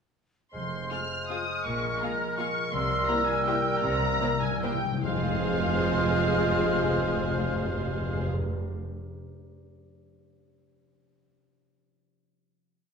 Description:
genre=classical, orchestral ballroom waltz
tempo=138-180 BPM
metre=3/4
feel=rubato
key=F minor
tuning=A4 = 442 Hz
part: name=muted studio violin section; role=melody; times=0.5-8.3 s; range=F5 to F6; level=-33 LUFS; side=left 2 dB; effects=none
part: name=mellow cor anglais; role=second line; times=0.5-8.3 s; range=Bb4 to C5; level=-35 LUFS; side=right 3 dB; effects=none
part: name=silver concert flute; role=second line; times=0.5-8.3 s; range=E6 to F6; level=-33 LUFS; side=left 1 dB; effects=none
part: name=warm bassoon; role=accompaniment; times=0.5-8.3 s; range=G3 to Ab3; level=-34 LUFS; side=right 4 dB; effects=none
part: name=muted studio cello section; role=bass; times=0.5-8.3 s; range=F2 to C3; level=-36 LUFS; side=right 4 dB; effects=none
part: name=muted studio double bass section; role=bass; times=0.5-8.3 s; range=F1 to C2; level=-37 LUFS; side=right 2 dB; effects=none
part: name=timpani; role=percussion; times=0.5-8.6 s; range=F2 to C3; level=-33 LUFS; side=left 1 dB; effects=none
part: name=concert harp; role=arpeggios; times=0.6-8.9 s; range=F2 to F5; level=-36 LUFS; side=left 6 dB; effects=none
part: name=muted studio violin section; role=second line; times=0.9-8.3 s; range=G4 to F5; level=-38 LUFS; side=left 3 dB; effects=none
part: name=muted studio viola section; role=accompaniment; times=0.9-8.3 s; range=Bb3 to F4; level=-38 LUFS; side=right 2 dB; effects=none
part: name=mellow French horn section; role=sustained chords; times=0.9-8.3 s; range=Ab3 to F4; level=-35 LUFS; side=left 2 dB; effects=none
room=moderate scoring stage reverb, RT60 1.9 s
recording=minimal, uncompressed stereo recording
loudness=-25 LUFS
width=side -6 dB against mid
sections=0.6-5.0 A section; 5.0-7.5 final chord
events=slowing down 2.2-5.0; timpani fill 2.7-5.0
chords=0.6 Fm; 1.7 Bbm7; 2.7 C7; 5.0 Fm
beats=| 0.55 0.92 1.31 | 1.67 2.02 2.39 | 2.74 3.09 3.47 | 3.83 4.21 4.63 | 5.04 5.45 5.87 | 6.27 6.68 7.11

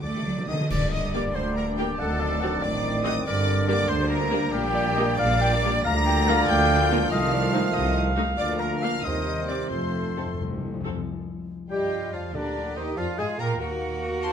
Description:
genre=classical, dramatic, fast romantic movement for symphony orchestra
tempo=93 BPM (dotted quarters)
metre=6/8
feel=rubato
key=G minor, Bb major from 5.9 s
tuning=A4 = 442 Hz
part: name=warm symphonic violin section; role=melody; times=0.0-14.3 s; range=D5 to Bb6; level=-35 LUFS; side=left 1 dB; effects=none
part: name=clear oboe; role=second line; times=0.0-14.3 s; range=G4 to Bb5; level=-33 LUFS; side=right 1 dB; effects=none
part: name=concert flute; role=second line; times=0.0-14.3 s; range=G4 to Bb5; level=-32 LUFS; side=left 2 dB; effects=none
part: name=rich symphonic violin section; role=second line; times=0.0-14.3 s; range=Bb3 to Bb5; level=-35 LUFS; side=left 2 dB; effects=none
part: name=rich symphonic viola section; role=accompaniment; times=0.0-14.3 s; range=Eb3 to C5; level=-32 LUFS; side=right 1 dB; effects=none
part: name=rich chamber cello section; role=bass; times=0.0-14.3 s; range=C2 to G4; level=-31 LUFS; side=right 2 dB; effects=none
part: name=rich symphonic double bass section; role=bass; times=0.0-14.3 s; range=F1 to Bb2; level=-30 LUFS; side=right 2 dB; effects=none
part: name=timpani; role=percussion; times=0.0-0.7, 9.7-12.9 s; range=F2 to D3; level=-32 LUFS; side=left 2 dB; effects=none
part: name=warm clarinet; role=second line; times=0.7-14.3 s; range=D4 to G5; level=-32 LUFS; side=left 3 dB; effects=none
part: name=clear trombone section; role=sustained chords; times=0.7-10.8 s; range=Bb2 to A3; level=-32 LUFS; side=right 4 dB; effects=none
part: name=warm French horn section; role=sustained chords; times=0.7-14.3 s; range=D3 to Gb4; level=-34 LUFS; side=left 6 dB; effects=none
part: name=dark trumpet section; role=stabs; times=0.7-10.8 s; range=C5 to F5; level=-32 LUFS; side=right 2 dB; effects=none
part: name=clash cymbals and concert bass drum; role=percussion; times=0.7-1.5 s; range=none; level=-34 LUFS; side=left 1 dB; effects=none
part: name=warm bassoon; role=accompaniment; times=11.7-14.3 s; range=D3 to Bb3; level=-34 LUFS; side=right 1 dB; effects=none
room=moderate recital hall reverb, RT60 1.8 s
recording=none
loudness=-22 LUFS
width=side -8 dB against mid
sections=0.7-11.1 A section; 11.1-14.3 B section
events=timpani fill 0.0-0.7, 9.7-11.1; band accent 0.7-1.1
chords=0.0 D; 0.7 Gm; 2.0 D7b9; 3.3 Gm; 4.5 Gm/Bb; 5.9 Bb/D; 7.1 F7/C; 8.4 Bb/D; 9.0 Cm/Eb; 9.7 F; 11.1 Ebadd9/F; 12.3 Bb7/D; 13.6 Ebm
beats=0.02 | 0.70 1.35 | 1.99 2.62 | 3.26 3.90 | 4.53 5.19 | 5.85 6.49 | 7.12 7.74 | 8.39 9.04 | 9.71 10.38 | 11.06 11.71 | 12.35 12.98 | 13.61 14.24

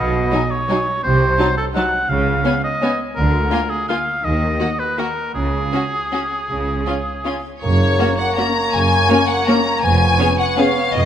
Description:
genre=classical, orchestral ballroom waltz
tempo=150-182 BPM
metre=3/4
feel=rubato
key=F# major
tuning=A4 = 440 Hz
part: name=clear oboe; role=second line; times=0.0-11.1 s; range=G#4 to Gb5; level=-22 LUFS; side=equal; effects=none
part: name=clear studio double bass section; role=bass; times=0.0-11.1 s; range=E#1 to D#2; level=-23 LUFS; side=right 2 dB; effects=none
part: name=rich studio cello section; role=bass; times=0.0-11.1 s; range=E#2 to D#3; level=-22 LUFS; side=right 2 dB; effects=none
part: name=clear studio violin section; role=melody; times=0.3-11.1 s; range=C#5 to A#5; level=-22 LUFS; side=left 4 dB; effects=none
part: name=clear studio violin section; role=second line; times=0.3-10.7 s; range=C#4 to C#5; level=-27 LUFS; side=left 4 dB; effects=none
part: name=clear studio viola section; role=accompaniment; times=0.3-10.7 s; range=F#3 to C#4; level=-24 LUFS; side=equal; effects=none
part: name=silver concert flute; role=second line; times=7.6-11.1 s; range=C#5 to A#5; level=-23 LUFS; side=left 2 dB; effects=none
part: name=warm bassoon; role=accompaniment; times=7.6-11.1 s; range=A#3 to B3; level=-23 LUFS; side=right 1 dB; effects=none
part: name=mellow French horn section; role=sustained chords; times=8.0-10.7 s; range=A#3 to C#4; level=-24 LUFS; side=left 5 dB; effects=none
room=moderate scoring stage reverb, RT60 2.0 s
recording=none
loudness=-15 LUFS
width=side -9 dB against mid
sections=0.0-7.6 A section; 7.6-11.1 B section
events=none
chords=0.0 G#m7/B (rootless); 1.0 Cdim7(no3); 2.1 C#7; 3.2 A#7/D; 4.2 D#m; 5.3 C#5; 7.6 F#; 9.8 C#7/E#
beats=0.33 0.69 | 1.03 1.39 1.75 | 2.10 2.45 2.82 | 3.17 3.52 3.89 | 4.25 4.60 4.98 | 5.35 5.73 6.12 | 6.50 6.87 7.26 | 7.63 8.00 8.38 | 8.73 9.10 9.48 | 9.83 10.20 10.58 | 10.93

